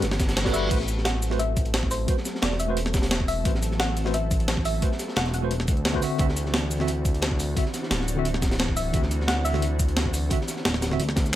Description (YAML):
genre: liquid drum and bass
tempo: 175 BPM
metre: 4/4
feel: straight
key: A dorian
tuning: A4 = 436 Hz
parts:
  - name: soft round pluck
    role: melody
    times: 0.0-5.7, 8.8-11.3 s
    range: C5 to A5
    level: -32 LUFS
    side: left 1 dB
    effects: analog chorus, tape echo
  - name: tine electric piano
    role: accompaniment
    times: 0.0-11.0 s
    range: D3 to E5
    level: -30 LUFS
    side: equal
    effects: medium stereo tremolo, digital delay
  - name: lush unison pad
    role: sustained chords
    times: 0.0-11.4 s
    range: E3 to A4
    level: -34 LUFS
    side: equal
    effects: chorus, vintage 12-bit sampler grit, sidechain pumping
  - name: smooth gliding synth bass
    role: bass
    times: 0.0-11.3 s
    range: D1 to D2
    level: -27 LUFS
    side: equal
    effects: none
  - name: breakbeat sampler-style drum kit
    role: drums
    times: 0.0-11.3 s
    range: cabasa, crash cymbal, hi-hat, snare drum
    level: -28 LUFS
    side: equal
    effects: small room reverb
  - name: crunchy breakbeat drum kit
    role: drums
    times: 0.0-11.3 s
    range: hi-hat, snare drum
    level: -33 LUFS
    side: equal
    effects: high-pass filter on hats, small room reverb, high-pass filter on snare, high-pass filter on room
  - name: reverse cymbal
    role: sound effects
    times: 0.2-0.7 s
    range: none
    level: -34 LUFS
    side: right 2 dB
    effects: none
  - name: electronic kick drum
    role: drums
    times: 0.2-11.2 s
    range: none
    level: -25 LUFS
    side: equal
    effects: overdrive, small room reverb
room: digital ambience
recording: none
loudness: -22 LUFS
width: side -13 dB against mid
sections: 0.0-11.4 A section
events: reverse cymbal 0.2-0.7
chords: 0.0 Gmaj9; 0.7 Am6; 6.0 D9